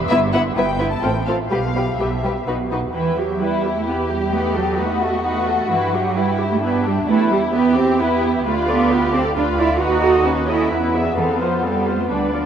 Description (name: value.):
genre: quick classical-period movement for string orchestra.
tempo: 130 BPM.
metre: 3/4.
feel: straight.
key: E minor.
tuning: A4 = 440 Hz.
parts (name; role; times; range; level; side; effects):
muted studio cello section; bass; 0.0-12.4 s; G2 to F#4; -21 LUFS; right 6 dB; none.
muted studio double bass section; bass; 0.0-12.5 s; G1 to G2; -26 LUFS; right 3 dB; none.
muted studio violin section; melody; 0.1-12.5 s; B4 to A5; -29 LUFS; left 5 dB; none.
muted studio violin section; second line; 0.1-12.5 s; B3 to E5; -22 LUFS; left 3 dB; none.
muted studio viola section; accompaniment; 0.1-12.5 s; G3 to E5; -22 LUFS; equal; none.
room: wet cathedral reverb, RT60 5.0 s.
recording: in a vast, echoing space.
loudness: -16 LUFS.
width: side -8 dB against mid.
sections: 0.0-2.9 A section; 2.9-12.5 A section.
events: none.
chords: 0.1 Em/G; 1.0 F/A; 1.5 Em/B; 2.5 B; 2.9 Em; 4.3 B7/E; 5.7 Em/G; 7.1 Em; 8.5 Bm7b5/D; 9.8 B7/D#; 10.7 E7; 11.2 F.